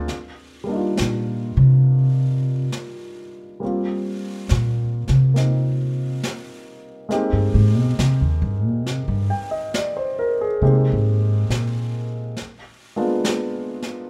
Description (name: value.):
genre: jazz ballad.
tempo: 68 BPM.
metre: 4/4.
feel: swing 68% on 8ths.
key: Eb major.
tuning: A4 = 445 Hz.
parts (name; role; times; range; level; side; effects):
warm concert grand piano; accompaniment; 0.0-14.1 s; G3 to G5; -28 LUFS; equal; none.
upright bass; bass; 0.0-12.3 s; Eb2 to C3; -20 LUFS; equal; none.
brushed snare drum and snare drum; drums; 0.1-14.1 s; none; -33 LUFS; equal; none.
room: light reverb.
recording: none.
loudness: -21 LUFS.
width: mono.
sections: 0.1-14.1 A section.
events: upright bass solo 0.1-14.1.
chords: 0.1 Ebmaj9; 3.6 Eb69; 7.1 Abmaj9; 12.4 Bb7b9.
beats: | 0.10 0.98 1.86 2.74 | 3.62 4.50 5.37 6.24 | 7.11 7.99 8.86 9.74 | 10.62 11.50 12.37 13.25.